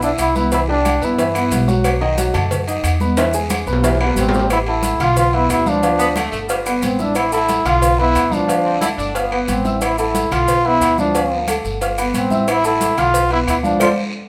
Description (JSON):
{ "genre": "latin, salsa", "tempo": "181 BPM", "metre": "4/4", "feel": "straight", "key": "A minor", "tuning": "A4 = 440 Hz", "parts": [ { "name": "bright trombone", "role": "melody", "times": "0.0-1.7, 4.2-13.9 s", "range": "C4 to F4", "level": "-20 LUFS", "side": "equal", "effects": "none" }, { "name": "dark grand piano", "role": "accompaniment", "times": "0.0-13.9 s", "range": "D#3 to F6", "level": "-23 LUFS", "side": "equal", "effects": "none" }, { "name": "upright bass", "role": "bass", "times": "0.0-13.9 s", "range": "G1 to G2", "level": "-25 LUFS", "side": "equal", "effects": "none" }, { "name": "agogo bells and timbales", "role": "percussion", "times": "0.0-13.9 s", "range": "none", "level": "-28 LUFS", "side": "equal", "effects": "none" }, { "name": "congas", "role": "percussion", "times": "0.0-13.9 s", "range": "none", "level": "-28 LUFS", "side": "equal", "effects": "none" }, { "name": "maracas", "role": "percussion", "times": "0.0-13.9 s", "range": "none", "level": "-34 LUFS", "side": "equal", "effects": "none" }, { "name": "claves", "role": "percussion", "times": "0.2-13.9 s", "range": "none", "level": "-33 LUFS", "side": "equal", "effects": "none" }, { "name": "cowbell", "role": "percussion", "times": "0.2-13.9 s", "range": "none", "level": "-29 LUFS", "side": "equal", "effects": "none" }, { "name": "guiro", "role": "percussion", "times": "0.2-13.9 s", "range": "none", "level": "-37 LUFS", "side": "equal", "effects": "none" }, { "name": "clear saxophone section", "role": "second line", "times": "6.0-9.4 s", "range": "G3 to E4", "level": "-25 LUFS", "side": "equal", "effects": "none" } ], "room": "wet large studio reverb, RT60 1.2 s", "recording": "none", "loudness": "-17 LUFS", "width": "mono", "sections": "0.0-4.5 A section; 4.5-14.3 B section", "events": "drum fill 3.2-4.5; band accent 13.8-14.3", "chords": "0.0 E5; 0.5 Cmaj7; 1.8 B7; 3.2 E; 4.5 A5; 5.2 Bdim; 5.8 Dm; 6.5 G7; 7.2 A5; 7.8 Bdim; 8.5 Dm; 9.2 G7; 9.8 A5; 10.5 Bdim; 11.1 Dm; 11.8 G7; 12.5 A5; 13.1 Bdim" }